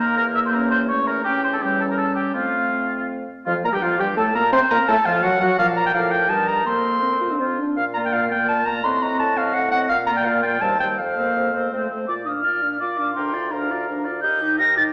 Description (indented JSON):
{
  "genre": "quick classical-period movement for wind quintet",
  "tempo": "167 BPM",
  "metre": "3/4",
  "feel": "straight",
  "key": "Bb major",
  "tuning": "A4 = 440 Hz",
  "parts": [
    { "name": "hollow concert flute", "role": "melody", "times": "0.0-14.8 s", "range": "F4 to Bb6", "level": "-28 LUFS", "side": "equal", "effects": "none" },
    { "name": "warm oboe", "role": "second line", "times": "0.0-14.9 s", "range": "C4 to F5", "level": "-28 LUFS", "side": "equal", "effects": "none" },
    { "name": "dark French horn", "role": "accompaniment", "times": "0.0-14.9 s", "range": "F3 to G4", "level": "-29 LUFS", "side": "equal", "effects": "none" },
    { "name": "warm clarinet", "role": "accompaniment", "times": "0.0-14.9 s", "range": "G3 to C6", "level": "-24 LUFS", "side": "equal", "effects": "none" },
    { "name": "mellow bassoon", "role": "bass", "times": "0.0-14.9 s", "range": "D2 to C3", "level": "-32 LUFS", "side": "equal", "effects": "none" }
  ],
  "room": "wet recital hall reverb, RT60 1.4 s",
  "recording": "none",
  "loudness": "-21 LUFS",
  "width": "mono",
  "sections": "0.0-3.5 A section; 3.5-12.1 B section; 12.1-14.9 C section",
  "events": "none",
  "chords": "0.2 C13b9/E (rootless); 2.3 F; 3.5 Bb5/F; 4.5 Gbmaj7; 5.6 Bb; 6.3 Eb/G; 6.7 Fsus4; 7.4 F5; 7.8 Bb; 8.8 Adim7; 9.9 Bb; 10.6 Cm/Eb; 11.0 Fsus4; 11.7 F; 12.1 Bb; 13.2 Bb/D; 14.2 Eb"
}